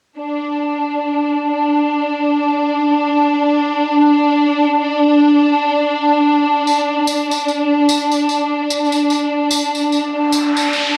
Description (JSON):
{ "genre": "trip hop", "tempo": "74 BPM", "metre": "4/4", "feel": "swing 58% on 16ths", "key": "unclear", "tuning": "A4 = 440 Hz", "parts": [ { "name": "clear symphonic string section", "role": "sustained chords", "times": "0.2-11.0 s", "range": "D4", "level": "-16 LUFS", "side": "equal", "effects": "none" }, { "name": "tambourine", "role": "percussion", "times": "6.7-10.9 s", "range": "none", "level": "-24 LUFS", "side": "equal", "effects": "none" }, { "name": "noise sweep", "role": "sound effects", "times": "10.2-11.0 s", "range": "none", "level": "-22 LUFS", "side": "equal", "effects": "none" } ], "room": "light reverb", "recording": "home recording on cassette", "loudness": "-16 LUFS", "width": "mono", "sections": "0.2-11.0 A section", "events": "noise sweep 10.2-11.0", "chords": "none" }